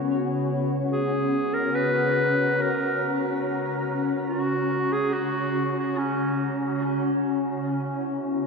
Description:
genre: ambient.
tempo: free time.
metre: none.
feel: none.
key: unclear.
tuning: A4 = 440 Hz.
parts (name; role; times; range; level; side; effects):
glassy FM pad; sustained chords; 0.0-8.5 s; C#3 to A#5; -25 LUFS; left 1 dB; ensemble chorus, built-in reverb.
soft synth bell; arpeggios; 0.0-6.9 s; B4 to C#5; -43 LUFS; left 2 dB; none.
analog drone; drone; 0.0-6.9 s; C#3 to G#3; -44 LUFS; right 2 dB; none.
warm clarinet; melody; 0.9-6.6 s; C#4 to B4; -27 LUFS; right 1 dB; diffuse ambient delay.
room: wet cathedral reverb, RT60 6.4 s.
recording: dark, warm production.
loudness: -23 LUFS.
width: side -4 dB against mid.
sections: 0.0-6.8 A section; 6.8-8.5 B section.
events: none.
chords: 0.0 F#sus4/C#; 6.8 C#m7.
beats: free time.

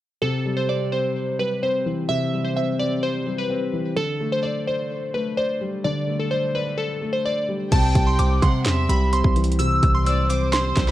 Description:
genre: hip hop, trap.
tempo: 128 BPM.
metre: 4/4.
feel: half-time.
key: unclear.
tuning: A4 = 440 Hz.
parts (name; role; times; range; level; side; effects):
glassy digital keys; melody; 0.2-10.9 s; A4 to E6; -24 LUFS; equal; chorus, tape echo.
dark grand piano; accompaniment; 0.2-10.9 s; C3 to D5; -24 LUFS; left 2 dB; none.
warm studio violin section; second line; 7.7-10.9 s; C5 to G5; -30 LUFS; right 2 dB; tape echo.
hard-hitting 808-style bass; bass; 7.7-10.9 s; C2 to C3; -21 LUFS; right 1 dB; none.
trap drum kit; drums; 7.7-10.9 s; crash cymbal, handclaps, hi-hat, kick drum, snare drum; -22 LUFS; right 1 dB; vintage 12-bit sampler grit.
room: light reverb, digital ambience.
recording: none.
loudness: -20 LUFS.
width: side -14 dB against mid.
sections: 0.2-7.7 A section; 7.7-10.9 B section.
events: none.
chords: 0.2 C; 4.0 Dsus4; 7.7 C.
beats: | 0.22 0.69 1.16 1.63 | 2.10 2.56 3.03 3.50 | 3.97 4.44 4.91 5.38 | 5.84 6.31 6.78 7.25 | 7.72 8.19 8.66 9.13 | 9.60 10.06 10.53.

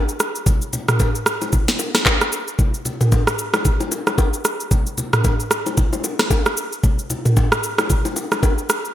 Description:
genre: amapiano.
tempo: 113 BPM.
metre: 4/4.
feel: swing 58% on 16ths.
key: none.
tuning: none.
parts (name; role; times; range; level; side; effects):
smooth R&B drum kit; drums; 0.1-8.9 s; handclaps, kick drum, rim click, shaker, snare drum, toms; -17 LUFS; equal; gated reverb.
congas and bongos; percussion; 0.5-8.6 s; none; -25 LUFS; left 2 dB; none.
room: light reverb, digital ambience.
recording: bright 1980s-style digital production.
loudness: -17 LUFS.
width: side -12 dB against mid.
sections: 0.0-8.9 A section.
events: none.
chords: none.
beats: | 0.47 1.00 1.53 2.06 | 2.59 3.12 3.65 4.18 | 4.71 5.24 5.77 6.30 | 6.84 7.37 7.90 8.43.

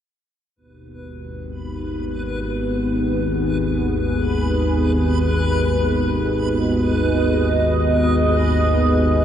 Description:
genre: dark ambient drone.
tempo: 54 BPM.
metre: 4/4.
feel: straight.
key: G# minor.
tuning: A4 = 440 Hz.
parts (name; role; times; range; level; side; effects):
sweeping resonant pad; sustained chords; 0.6-9.2 s; B3 to D#5; -22 LUFS; right 1 dB; chorus.
overtone-sweeping drone; drone; 1.2-9.2 s; G#1 to D#2; -20 LUFS; equal; chorus, built-in reverb.
backwards swelling texture; texture; 1.3-9.2 s; B4; -27 LUFS; right 1 dB; built-in reverb.
room: wet huge ambient reverb, RT60 7.9 s.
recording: none.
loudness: -17 LUFS.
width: side -9 dB against mid.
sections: 0.6-9.2 A section.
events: none.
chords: 0.6 G#m.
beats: | 0.58 1.70 2.81 3.92 | 5.03 6.14 7.25 8.36.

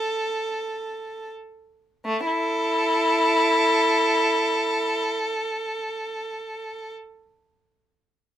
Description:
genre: classical, baroque-style suite movement for unaccompanied violin.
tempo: free time.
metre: none.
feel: none.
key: unclear.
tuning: A4 = 443 Hz.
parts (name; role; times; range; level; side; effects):
rich violin; solo; 0.0-6.9 s; A3 to A4; -22 LUFS; equal; none.
room: moderate studio ambience, RT60 0.5 s.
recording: minimal, uncompressed stereo recording.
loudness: -21 LUFS.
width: side -11 dB against mid.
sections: 0.0-2.0 A section; 2.0-6.3 B section.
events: slowing down 0.0-2.0.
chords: none.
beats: free time.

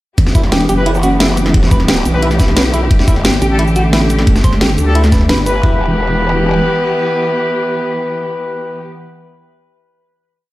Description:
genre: dark technical drum and bass.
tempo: 176 BPM.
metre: 4/4.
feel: straight.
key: E minor.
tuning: A4 = 440 Hz.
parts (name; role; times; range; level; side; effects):
muted studio string section; sustained chords; 0.2-8.8 s; D3 to G4; -20 LUFS; equal; sidechain pumping.
growl bass; bass; 0.2-6.6 s; E1 to B1; -15 LUFS; equal; chorus, tube saturation, sidechain pumping.
drum and bass drum kit; drums; 0.2-5.5 s; cabasa, hi-hat, snare drum; -16 LUFS; equal; none.
electronic kick drum; drums; 0.2-5.7 s; none; -11 LUFS; equal; none.
semi-hollow electric guitar; arpeggios; 0.3-5.8 s; E4 to C5; -20 LUFS; right 1 dB; sidechain pumping, tape echo.
warm brass ensemble; stabs; 0.8-8.8 s; D4 to B4; -19 LUFS; left 2 dB; tape echo.
pulsing pluck wobble bass; bass; 3.4-5.3 s; A1 to D2; -12 LUFS; equal; distortion, chorus, tube saturation.
room: light reverb.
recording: played on a big sound system in a bare room, stone room reverb.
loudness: -11 LUFS.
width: side -17 dB against mid.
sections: 0.2-5.6 drop; 5.6-8.4 final chord.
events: drop 0.2-5.6.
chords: 0.2 Em; 2.9 Gsus2; 5.6 Em.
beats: | 0.18 0.52 0.86 1.20 | 1.54 1.89 2.23 2.57 | 2.91 3.25 3.59 3.93 | 4.27 4.61 4.95 5.29 | 5.63 5.97 6.32 6.66 | 7.00 7.34 7.68 8.02.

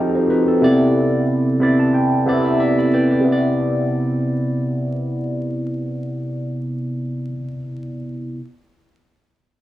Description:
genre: R&B.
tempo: 91 BPM.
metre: 4/4.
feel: swing 54% on 16ths.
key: C major.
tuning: A4 = 440 Hz.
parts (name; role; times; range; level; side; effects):
barky tine electric piano; accompaniment; 0.0-8.4 s; C3 to D6; -17 LUFS; equal; overdrive, phaser, cassette tape.
room: moderate spring reverb, RT60 2.1 s.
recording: home recording on cassette, vinyl crackle, small room ambience.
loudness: -16 LUFS.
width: side -14 dB against mid.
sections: 0.0-3.2 A section; 3.2-5.9 B section.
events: tine electric piano fill 1.3-3.2.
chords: 0.0 F7; 0.6 Cmaj9.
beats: | 0.61 1.27 1.93 2.59 | 3.25 3.91 4.57 5.22.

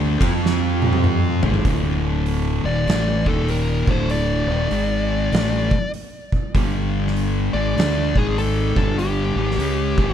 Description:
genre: stoner and doom metal.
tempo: 98 BPM.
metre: 4/4.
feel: swing 64% on 8ths.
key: unclear.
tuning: A4 = 440 Hz.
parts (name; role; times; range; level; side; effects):
phased string machine; sustained chords; 0.0-1.7 s; F3 to A4; -33 LUFS; right 2 dB; none.
fuzz guitar; riff; 0.0-10.1 s; D2 to F4; -26 LUFS; right 14 dB; distortion.
thick fuzz guitar; riff; 0.0-10.1 s; D2 to F4; -24 LUFS; left 9 dB; distortion.
growling fingered electric bass; bass; 0.0-10.1 s; D1 to F2; -23 LUFS; equal; overdrive, tube saturation.
oversized low-tuned drum kit; drums; 0.2-10.1 s; hi-hat, kick drum, ride cymbal, snare drum, toms; -22 LUFS; right 1 dB; none.
fuzz lead guitar; melody; 2.7-10.1 s; G4 to D5; -25 LUFS; left 2 dB; distortion, digital delay.
room: light reverb.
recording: dark, warm production.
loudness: -18 LUFS.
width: side -9 dB against mid.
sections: 0.0-1.7 A section; 1.7-10.1 B section.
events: drum fill 0.4-1.7.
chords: 0.1 F5; 1.3 G5; 1.7 D5; 3.2 Eb5; 3.8 D5; 4.7 G#5; 5.3 D5; 6.5 G5; 8.1 G#5; 8.7 G5.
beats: 0.43 1.04 | 1.66 2.27 2.88 3.49 | 4.10 4.71 5.33 5.94 | 6.55 7.16 7.77 8.38 | 8.99 9.59.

